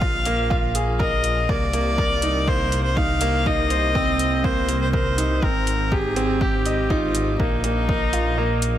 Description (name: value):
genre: piano and strings electronica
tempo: 122 BPM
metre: 4/4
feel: straight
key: C minor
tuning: A4 = 440 Hz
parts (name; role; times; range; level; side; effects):
- warm viola; melody; 0.0-8.8 s; Eb4 to F5; -24 LUFS; left 2 dB; none
- clear concert grand piano; riff; 0.0-8.8 s; Bb3 to Eb5; -24 LUFS; right 2 dB; ping-pong delay
- dark detuned saw bass; bass; 0.0-8.8 s; Ab1 to C2; -24 LUFS; equal; sidechain pumping
- electronic kick drum; drums; 0.0-8.0 s; none; -25 LUFS; equal; overdrive
- electronic hi-hat; drums; 0.3-8.7 s; none; -29 LUFS; equal; overdrive
room: light reverb, small room reverb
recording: none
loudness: -19 LUFS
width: side -11 dB against mid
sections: 0.0-8.8 A section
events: kick drops out 8.4-8.8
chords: 0.0 Bb7sus4; 1.5 Cm7; 5.4 Abmaj7; 7.4 Bbsus4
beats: 0.02 0.51 1.00 | 1.50 1.99 2.48 2.97 | 3.46 3.96 4.45 4.94 | 5.43 5.92 6.42 6.91 | 7.40 7.89 8.38